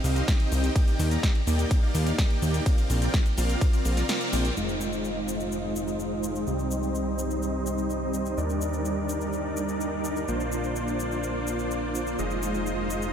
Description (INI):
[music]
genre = EDM, festival progressive house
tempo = 126 BPM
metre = 4/4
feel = straight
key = unclear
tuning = A4 = 442 Hz
[part]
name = dense compressed supersaw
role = riff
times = 0.0-13.1 s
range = G3 to Bb5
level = -28 LUFS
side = equal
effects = sidechain pumping, low-pass filter, analog delay
[part]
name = fat analog bass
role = bass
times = 0.0-13.1 s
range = F1 to Eb2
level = -29 LUFS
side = equal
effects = sidechain pumping
[part]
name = big-room dance drum kit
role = drums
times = 0.0-13.1 s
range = cabasa, hi-hat, ride cymbal, snare drum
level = -35 LUFS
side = left 1 dB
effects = none
[part]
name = electronic kick drum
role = drums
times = 0.3-3.7 s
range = none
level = -23 LUFS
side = equal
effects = none
[sound]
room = moderate huge ambient reverb, RT60 7.9 s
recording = dreamy mix soaked in reverb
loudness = -24 LUFS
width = side -8 dB against mid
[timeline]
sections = 0.0-4.6 A section; 4.6-13.1 B section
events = drop 0.0-4.6; kick drops out 4.1-4.6; band accent 4.1; filter sweep on supersaw synth 4.6-13.1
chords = 0.0 Cm; 0.8 Ebmaj7; 2.7 Bbadd9; 4.6 Fm7; 6.5 Cm; 8.4 Ebmaj7; 10.3 Bbadd9; 12.2 Fm7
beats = 0.28 | 0.76 1.23 1.71 2.19 | 2.66 3.14 3.61 4.09 | 4.57 5.04 5.52 6.00 | 6.47 6.95 7.42 7.90 | 8.38 8.85 9.33 9.80 | 10.28 10.76 11.23 11.71 | 12.19 12.66